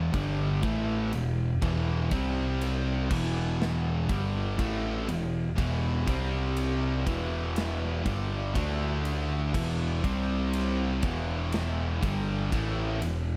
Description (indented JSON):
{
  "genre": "stoner and doom metal",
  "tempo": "61 BPM",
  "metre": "4/4",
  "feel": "straight",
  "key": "E minor",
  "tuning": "A4 = 440 Hz",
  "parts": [
    { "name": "high-gain distorted guitar", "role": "riff", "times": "0.0-13.4 s", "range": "E2 to D4", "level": "-38 LUFS", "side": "equal", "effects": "distortion" },
    { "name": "thick fuzz guitar", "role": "riff", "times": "0.0-13.4 s", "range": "E2 to D4", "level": "-36 LUFS", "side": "equal", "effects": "distortion" },
    { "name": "thick fuzz guitar", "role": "riff", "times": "0.0-13.4 s", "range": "E2 to D4", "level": "-35 LUFS", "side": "equal", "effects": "distortion" },
    { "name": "overdriven fingered electric bass", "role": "bass", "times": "0.0-13.4 s", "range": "E1 to D2", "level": "-35 LUFS", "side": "equal", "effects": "none" },
    { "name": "big rock drum kit", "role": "drums", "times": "0.1-13.2 s", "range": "crash cymbal, kick drum, ride cymbal, snare drum", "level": "-37 LUFS", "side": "equal", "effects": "none" }
  ],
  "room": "light reverb, studio reverb",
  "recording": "none",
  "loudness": "-29 LUFS",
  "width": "mono",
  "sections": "0.0-13.4 A section",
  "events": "none",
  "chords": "0.0 Em; 2.1 C5; 3.1 Em; 6.1 C5; 7.1 Em; 8.5 D5; 9.5 E5; 10.0 C5; 11.0 Em",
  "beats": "0.63 | 1.62 2.61 3.60 4.59 | 5.58 6.57 7.56 8.55 | 9.54 10.53 11.52 12.52"
}